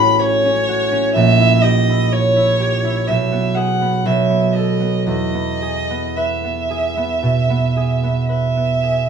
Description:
classical, romantic duo for violin and harp; 55-64 BPM; 4/4; rubato; E major; A4 = 440 Hz
rich violin; melody; 0.0-9.1 s; C#5 to B5; -18 LUFS; right 1 dB
concert harp; accompaniment; 0.0-9.1 s; A1 to C#5; -16 LUFS; right 2 dB
moderate studio reverb, RT60 0.7 s; -14 LUFS; side -7 dB against mid
0.0-9.1 A section
0.0 F#m/A; 1.1 A#dim7; 3.1 E/B; 4.0 B7; 5.1 E

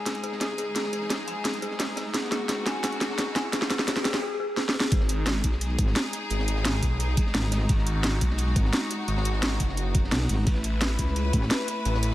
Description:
dark technical drum and bass; 173 BPM; 4/4; straight; G# phrygian; A4 = 441 Hz
clear studio string section; sustained chords; 0.0-12.1 s; G#3 to B4; -33 LUFS; left 1 dB; sidechain pumping
riser; sound effects; 0.7-4.2 s; -38 LUFS; right 1 dB
dark detuned synth bell; arpeggios; 0.1-4.9 s; G#4 to G#5; -32 LUFS; left 2 dB; chorus, sidechain pumping, low-pass filter, tape echo
crunchy breakbeat drum kit; drums; 0.1-12.1 s; hi-hat, ride cymbal, snare drum; -39 LUFS; equal; high-pass filter on cymbals, high-pass filter on hats, high-pass filter on snare, high-pass filter on room
drum and bass drum kit; drums; 0.1-12.1 s; hi-hat, snare drum; -28 LUFS; equal; overdrive
phased detuned saw bass; bass; 4.9-12.1 s; F#1 to C#2; -26 LUFS; equal; phaser, tube saturation, sidechain pumping
electronic kick drum; drums; 4.9-11.4 s; -25 LUFS; equal; overdrive
metallic wobble bass; bass; 5.8-11.5 s; G#1 to B1; -25 LUFS; equal; chorus
light reverb, small room ambience; -24 LUFS; side -15 dB against mid
0.0-4.9 A section; 4.9-12.1 B section
build-up 0.0-4.9; drum fill 0.0-4.2, 4.6-4.9; riser 0.7-4.2; drop 4.9-12.1
0.0 G#5; 4.9 G#m; 10.5 Aadd9

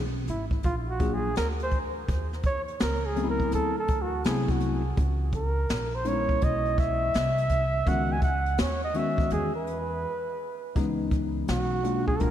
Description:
hip hop, jazz-hop; 83 BPM; 4/4; swing 65% on 16ths; C# dorian; A4 = 439 Hz
upright bass; bass; 0.0-12.3 s; G#1 to E2; -30 LUFS; equal
breathy flugelhorn; melody; 0.3-12.3 s; E4 to G#5; -29 LUFS; right 2 dB; analog delay
jazz brush drum kit; drums; 0.3-12.3 s; hi-hat, kick drum, snare drum; -30 LUFS; equal
tine electric piano; accompaniment; 1.0-12.3 s; D#3 to G#4; -32 LUFS; left 4 dB; overdrive, analog chorus
moderate lush hall reverb, RT60 3.1 s; dreamy mix soaked in reverb; -24 LUFS; side -10 dB against mid
0.0-10.8 A section; 10.8-12.3 B section
flugelhorn solo 0.0-10.8; break 10.0-10.8
0.0 C#m7 (rootless); 0.6 A#7b13; 2.1 D#m7; 3.5 D13; 5.0 C#m9

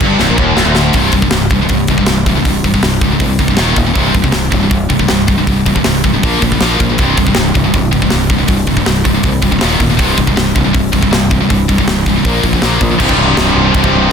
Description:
heavy metal; 159 BPM; 4/4; straight; C minor; A4 = 440 Hz
heavy high-gain guitar; riff; 0.0-0.9, 13.0-14.1 s; C2 to Eb4; -16 LUFS; equal; distortion
scooped high-gain guitar; riff; 0.0-14.1 s; C2 to Bb3; -15 LUFS; left 13 dB; distortion
scooped high-gain guitar; riff; 0.0-14.1 s; C2 to Bb3; -16 LUFS; right 13 dB; distortion
fingered electric bass; bass; 0.0-14.1 s; C1 to C2; -17 LUFS; equal
tight metal drum kit; drums; 0.0-13.9 s; crash cymbal, hi-hat, kick drum, snare drum; -15 LUFS; equal
light reverb; dense, heavily limited modern master; -9 LUFS; side -7 dB against mid
0.9-13.0 A section; 13.0-14.1 B section
drum fill 0.2-0.9
0.0 Cm; 0.9 C5; 3.6 Eb5; 4.0 C5; 6.2 Bb5; 7.0 C5; 9.6 Eb5; 10.0 C5; 12.2 Bb5; 13.0 Cm

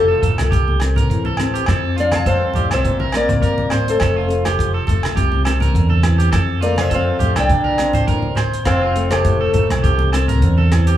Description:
highlife guitar band; 103 BPM; 4/4; swing 54% on 16ths; F major; A4 = 445 Hz
fingerpicked old ladder-braced acoustic guitar; melody; 0.0-10.7 s; F4 to A5; -20 LUFS; left 1 dB
brilliant trombone; second line; 0.0-10.7 s; F3 to F4; -26 LUFS; left 2 dB
fingerpicked steel-string acoustic guitar; accompaniment; 0.0-11.0 s; F2 to C4; -25 LUFS; left 5 dB
electric guitar at the edge of break-up; arpeggios; 0.0-11.0 s; F4 to C5; -24 LUFS; right 6 dB; spring reverb
fingered electric bass; bass; 0.0-10.9 s; F1 to F2; -19 LUFS; equal
damped 70s drum kit; drums; 0.2-11.0 s; hi-hat, kick drum, rim click; -21 LUFS; equal
congas; percussion; 0.2-10.9 s; -24 LUFS; right 1 dB
agogo bells; percussion; 0.4-10.9 s; -28 LUFS; right 4 dB
wet large studio reverb, RT60 1.4 s; band playing live in one room, small room ambience; -14 LUFS; side -12 dB against mid
0.0-11.0 A section
0.0 F; 0.5 C; 1.7 F; 2.8 Bbadd9; 4.0 F; 5.2 C; 6.3 F; 7.5 Bbadd9; 8.7 F; 9.8 C

